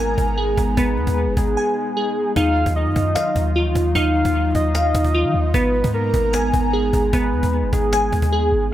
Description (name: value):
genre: hip hop, trap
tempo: 151 BPM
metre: 4/4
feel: half-time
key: unclear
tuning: A4 = 439 Hz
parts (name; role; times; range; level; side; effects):
- soft octave-layered synth lead; second line; 0.0-8.7 s; Ab4 to F5; -23 LUFS; equal; chorus, tape echo
- airy breathy pad; sustained chords; 0.0-8.7 s; Eb3 to Bb5; -27 LUFS; left 1 dB; chorus
- glassy digital keys; arpeggios; 0.0-8.7 s; Cb4 to Ab5; -22 LUFS; equal; chorus, tape echo
- clean 808-style bass; bass; 0.0-8.7 s; Gb1 to Eb3; -21 LUFS; equal; none
- cajon; drums; 0.1-8.4 s; none; -27 LUFS; equal; none
room: light reverb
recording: none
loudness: -17 LUFS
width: side -12 dB against mid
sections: 0.0-8.7 A section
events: drums muted 1.6-2.4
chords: 0.0 Abmadd9; 2.4 Ebmadd9; 5.5 Abmadd9